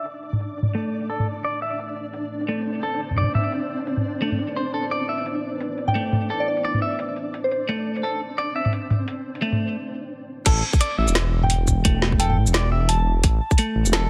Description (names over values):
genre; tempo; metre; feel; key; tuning
half-time drum and bass; 173 BPM; 4/4; swing 58% on 16ths, half-time; A minor; A4 = 441 Hz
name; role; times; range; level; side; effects
deep dark ambient pad; sustained chords; 0.6-10.5 s; A3 to C5; -39 LUFS; equal; chorus, built-in reverb, sidechain pumping
clean electric guitar; arpeggios; 0.0-14.1 s; A3 to E5; -29 LUFS; equal; vintage 12-bit sampler grit, low-pass filter, digital delay
flickering grainy texture; texture; 0.0-9.8 s; C4 to D5; -33 LUFS; equal; built-in reverb
drum and bass drum kit; drums; 0.1-14.0 s; crash cymbal, hi-hat, shaker, snare drum, toms; -26 LUFS; equal; low-pass filter on hats, low-pass filter on snare, low-pass filter on perc, low-pass filter on toms, low-pass filter on cymbals, low-pass filter on room
soft synth bell; melody; 5.9-7.6, 11.4-13.0 s; C5 to A5; -30 LUFS; equal; chorus, digital delay
dark detuned saw bass; bass; 10.5-14.1 s; E1 to A1; -23 LUFS; equal; none
electronic kick drum; drums; 10.5-13.6 s; none; -21 LUFS; equal; none
room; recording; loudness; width
light reverb; none; -23 LUFS; mono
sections
0.0-10.5 A section; 10.5-14.1 B section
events
filter sweep on ambient pad 0.0-10.5; filter sweep on clean electric guitar 0.0-10.5; break 9.8-10.5; drop 10.5-14.1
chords
0.0 Am; 10.5 A5